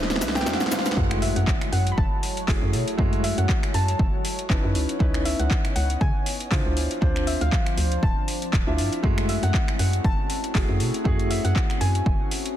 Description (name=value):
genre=deep house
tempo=119 BPM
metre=4/4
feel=swing 56% on 16ths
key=F# minor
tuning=A4 = 441 Hz
part: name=soft round pluck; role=melody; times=0.0-12.6 s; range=E5 to B5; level=-33 LUFS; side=equal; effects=chorus, tape echo
part: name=warbly tape-like pad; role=sustained chords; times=0.0-12.6 s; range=F3 to D#5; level=-34 LUFS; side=left 2 dB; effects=chorus, built-in reverb, sidechain pumping
part: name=felt-muted upright piano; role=stabs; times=0.0-12.5 s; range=G#3 to E5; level=-29 LUFS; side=equal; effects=sidechain pumping, ping-pong delay
part: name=hollow knocking FM bass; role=bass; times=0.0-12.2 s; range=D1 to C#3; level=-25 LUFS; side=equal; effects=sidechain pumping
part: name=deep house drum kit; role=drums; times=0.0-12.5 s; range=finger snaps, handclaps, hi-hat, snare drum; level=-30 LUFS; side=equal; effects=overdrive
part: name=riser, swell and impact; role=sound effects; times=0.0-3.0 s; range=none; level=-32 LUFS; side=right 1 dB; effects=none
part: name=cabasa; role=percussion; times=0.1-0.9 s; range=none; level=-37 LUFS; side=left 6 dB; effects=none
part: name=electronic kick drum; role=drums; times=0.2-12.2 s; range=none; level=-24 LUFS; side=equal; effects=overdrive, high-pass filter on kick, high-pass filter on room
room=light reverb, digital ambience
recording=dense, heavily limited modern master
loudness=-21 LUFS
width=side -11 dB against mid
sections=1.0-12.6 A section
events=drum fill 0.0-1.0; riser 0.0-1.0; swell 0.0-1.0; drop 1.0-12.6; impact 1.0-3.0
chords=0.0 Dm9; 1.0 F#m9; 4.8 C#m9; 6.8 Dm9; 9.0 F#m9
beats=0.47 | 0.97 1.47 1.98 2.48 | 2.99 3.49 3.99 4.50 | 5.00 5.51 6.01 6.51 | 7.02 7.52 8.03 8.53 | 9.04 9.54 10.04 10.55 | 11.05 11.56 12.06 12.56